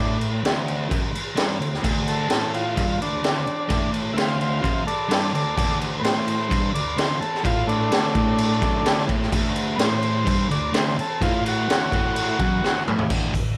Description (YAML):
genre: garage rock duo or trio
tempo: 128 BPM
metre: 4/4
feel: straight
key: D mixolydian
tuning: A4 = 440 Hz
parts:
  - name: overdriven combo organ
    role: melody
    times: 0.0-12.8 s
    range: A3 to F5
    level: -28 LUFS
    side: equal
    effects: plate reverb
  - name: fuzz guitar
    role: riff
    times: 0.0-13.6 s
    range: D2 to D3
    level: -27 LUFS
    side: equal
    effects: distortion
  - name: raw garage drum kit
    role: drums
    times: 0.2-13.4 s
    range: crash cymbal, hi-hat, kick drum, snare drum, toms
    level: -26 LUFS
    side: equal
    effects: none
room: light reverb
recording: none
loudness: -22 LUFS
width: mono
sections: 0.0-13.1 A section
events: transistor combo organ solo 0.0-13.1; drum fill 12.6-13.1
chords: 0.0 D